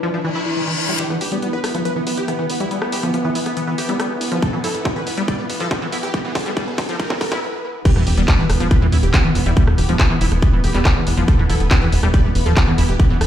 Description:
psychedelic trance; 140 BPM; 4/4; straight; E minor; A4 = 438 Hz
supersaw stab; melody; 0.0-13.3 s; E3 to D5; -25 LUFS; right 1 dB; phaser, cassette tape, sidechain pumping, digital delay
bubbling stepped-filter texture; sustained chords; 0.0-13.3 s; E3 to D4; -28 LUFS; left 1 dB; chorus, built-in reverb, sidechain pumping
liquid acid bass; riff; 0.0-13.2 s; E3 to E4; -26 LUFS; left 1 dB; chorus, auto-pan, sidechain pumping, digital delay
granular cloud pad; texture; 0.0-13.3 s; E4 to B5; -33 LUFS; right 1 dB
reverse cymbal and riser; sound effects; 0.3-7.4 s; -28 LUFS; left 1 dB
techno drum kit; drums; 1.0-13.3 s; crash cymbal, handclaps, hi-hat, rim click; -25 LUFS; equal
plucky analog bass; bass; 1.1-13.3 s; D1 to E2; -19 LUFS; equal; high-pass filter
electronic kick drum; drums; 4.4-13.1 s; -17 LUFS; equal; distortion
formant-sweep wobble bass; second line; 9.4-10.8 s; B3 to G4; -35 LUFS; right 3 dB
little or no reverb; played on a big sound system in a bare room, large studio reverb, high-pass filter; -16 LUFS; side -11 dB against mid
1.0-7.9 A section; 7.9-13.3 B section
reverse cymbal 0.3-1.0; build-up 1.0-7.9; riser 1.0-7.4; filter sweep on acid bass 1.0-7.9; drum fill 4.4-7.4; stop 7.4-7.9; drop 7.9-13.3
0.0 E5

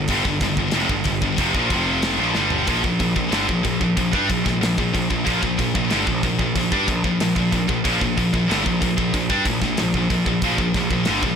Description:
heavy metal; 93 BPM; 4/4; straight; A4 = 440 Hz
heavy high-gain guitar; riff; 0.0-11.4 s; F2 to D4; -23 LUFS; left 12 dB; distortion
scooped high-gain guitar; riff; 0.0-11.4 s; F2 to D4; -23 LUFS; right 12 dB; distortion
fuzz picked electric bass; bass; 0.0-11.4 s; F1 to G2; -25 LUFS; equal; overdrive
tight metal drum kit; drums; 0.1-11.4 s; hi-hat, kick drum, snare drum, toms; -25 LUFS; equal
light reverb; blown-out, overdriven recording, overdrive; -18 LUFS; side -7 dB against mid
0.0-11.4 A section
drum fill 2.4-2.7
0.0 G5; 2.7 Bb5

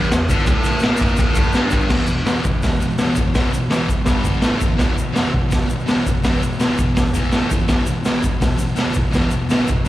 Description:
garage rock duo or trio; 166 BPM; 4/4; straight; A4 = 441 Hz
thick fuzz guitar; riff; 0.0-9.9 s; E2 to A3; -20 LUFS; equal; distortion, slapback echo
tube shaker; percussion; 0.0-9.9 s; -38 LUFS; left 1 dB
raw garage drum kit; drums; 0.1-9.8 s; crash cymbal, hi-hat, kick drum, ride cymbal, snare drum; -17 LUFS; equal
light reverb, small room ambience; live gig heard through the venue's PA, recital hall reverb; -16 LUFS; side -15 dB against mid
0.0-1.9 A section; 1.9-9.9 B section
0.0 E5; 4.1 G5; 4.4 A5; 4.8 E5; 7.3 A5; 7.7 E5

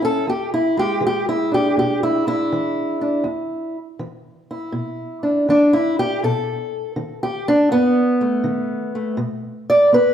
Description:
acoustic country blues, solo or duo; 81 BPM; 4/4; swing 66% on 8ths; E mixolydian; A4 = 438 Hz
fingerpicked steel-string acoustic guitar; solo; 0.0-10.1 s; E2 to D5; -17 LUFS; equal
wet recital hall reverb, RT60 1.4 s; recorded in a church or concert hall; -17 LUFS; side -9 dB against mid
0.0-10.1 A section
steel-string acoustic guitar solo 0.0-10.1
0.3 E7; 6.2 B7

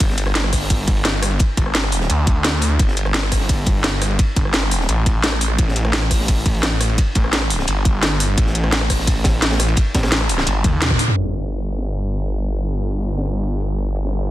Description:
dark technical drum and bass; 172 BPM; 4/4; straight; A4 = 441 Hz
snarling distorted saw bass; bass; 0.0-14.3 s; G1 to Eb2; -20 LUFS; equal; distortion, overdrive, sidechain pumping
crunchy breakbeat drum kit; drums; 0.0-14.3 s; hi-hat, ride cymbal, snare drum; -28 LUFS; equal; high-pass filter on cymbals, low-pass filter on cymbals, high-pass filter on hats, low-pass filter on hats, high-pass filter on snare, low-pass filter on snare, high-pass filter on room, low-pass filter on room
drum and bass drum kit; drums; 0.0-14.2 s; hi-hat, rim click, snare drum, toms; -21 LUFS; equal
electronic kick drum; drums; 0.0-11.0 s; -17 LUFS; equal
little or no reverb; dense, heavily limited modern master, low-pass filter; -16 LUFS; side -14 dB against mid
0.0-11.2 A section; 11.2-14.3 B section
drum fill 10.6-11.2; band accent 10.8; filter sweep 11.2-14.3

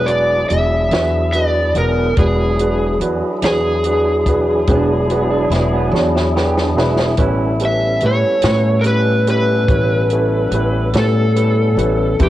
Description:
slow blues; 48 BPM (dotted quarters); 12/8; straight; A4 = 438 Hz
overdriven slide guitar; melody; 0.0-12.3 s; G4 to E5; -18 LUFS; left 1 dB; cassette tape
tonewheel organ; sustained chords; 0.0-12.3 s; F#3 to A4; -22 LUFS; equal; slow rotary speaker, cassette tape
upright bass; bass; 0.0-12.3 s; E1 to A2; -18 LUFS; equal
warm upright piano; accompaniment; 0.1-12.3 s; B3 to D5; -21 LUFS; right 3 dB; cassette tape
compact cocktail drum kit; drums; 0.1-12.3 s; hi-hat, kick drum, snare drum; -20 LUFS; equal; cassette tape
electric guitar through a small old amp; second line; 4.7-7.6 s; B3 to G4; -22 LUFS; right 2 dB; cassette tape
light reverb, studio ambience; home recording on cassette; -13 LUFS; side -14 dB against mid
0.0-12.3 A section
drum fill 5.9-7.2
0.0 E9; 7.2 A9

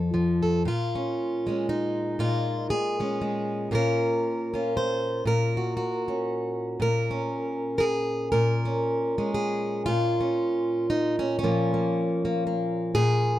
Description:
folk, solo fingerstyle acoustic guitar; 117 BPM; 3/4; swing 59% on 8ths; Bb minor; A4 = 437 Hz
fingerpicked plugged-in steel-string acoustic guitar; solo; 0.0-13.4 s; F2 to C5; -24 LUFS; equal
little or no reverb; close, detailed microphones; -24 LUFS; side -14 dB against mid
0.7-13.0 A section
0.0 F; 0.7 Bbm7; 3.7 Gbmaj7/Bb; 6.8 Bbm7; 9.9 Bbmadd11; 11.4 Bbm

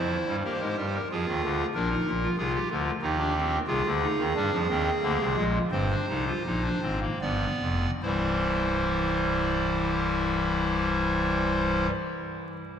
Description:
classical, baroque-style 3-part fugue for pipe organ; 72-93 BPM; 3/4; straight; A4 = 440 Hz
pipe organ, clarinet reed; solo; 0.0-11.9 s; C1 to D5; -25 LUFS; equal
wet cathedral reverb, RT60 5.1 s; in a vast, echoing space, vinyl crackle; -24 LUFS; side -8 dB against mid
0.0-8.0 A section; 8.0-12.8 B section
slowing down 2.7-8.0
0.0 C7; 1.1 Fm; 1.8 Bb; 3.0 Eb; 3.7 Fm/C; 5.0 Bb9; 5.7 Cm/G; 7.2 G7; 8.0 C

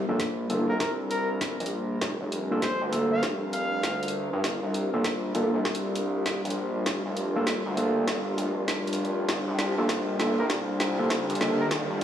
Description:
glitch hop; 99 BPM; 4/4; swing 64% on 16ths; G minor; A4 = 440 Hz
warm analog pad; sustained chords; 0.0-12.0 s; G3 to Bb4; -32 LUFS; left 1 dB; chorus, vintage 12-bit sampler grit, sidechain pumping
gritty driven synth bass; bass; 0.0-12.0 s; F1 to G2; -31 LUFS; equal; tube saturation, high-pass filter
overdriven tine electric piano; stabs; 0.1-11.6 s; Bb3 to A4; -30 LUFS; equal; sidechain pumping, low-pass filter, tape echo
drum and bass drum kit; drums; 0.2-12.0 s; hi-hat, snare drum; -31 LUFS; equal; overdrive, small room ambience
electronic kick drum; drums; 0.2-11.9 s; -37 LUFS; equal; overdrive, high-pass filter on kick, small room ambience
warm trumpet; melody; 0.7-4.1, 10.4-11.7 s; Bb4 to F5; -33 LUFS; equal; tape echo
riser; sound effects; 10.0-12.0 s; -40 LUFS; equal
moderate lush hall reverb, RT60 2.1 s; dry, gritty hardware recording, high-pass filter, studio reverb; -25 LUFS; side -10 dB against mid
0.0-12.0 A section
build-up 0.0-12.0; drum fill 0.0-12.0; filter sweep on tine electric piano 0.0-12.0; riser 10.0-12.0
0.0 Gm7

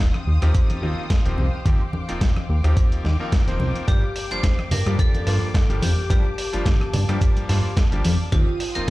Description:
nu-disco, nu disco; 108 BPM; 4/4; swing 55% on 16ths; G minor; A4 = 439 Hz
rich studio string section; sustained chords; 0.0-8.9 s; Bb3 to Eb6; -35 LUFS; left 3 dB; vintage 12-bit sampler grit, sidechain pumping
chorused synth bass; bass; 0.0-8.9 s; Eb1 to G2; -21 LUFS; equal
dusty soul sampler-style drum kit; drums; 0.1-8.9 s; hi-hat, rim click, snare drum; -30 LUFS; right 1 dB; overdrive
congas; percussion; 0.1-8.2 s; -29 LUFS; right 1 dB
bright electric grand piano; accompaniment; 0.4-8.9 s; F3 to C5; -31 LUFS; left 1 dB; analog delay
electronic kick drum; drums; 0.5-8.9 s; -19 LUFS; equal; overdrive
vibraphone with hard mallets; melody; 3.9-8.9 s; F4 to C5; -30 LUFS; left 1 dB; analog delay
small room ambience; played on a big sound system in a bare room, large studio reverb; -18 LUFS; side -18 dB against mid
0.0-8.9 A section
0.0 Eb69; 3.9 Gm7; 8.3 Eb69

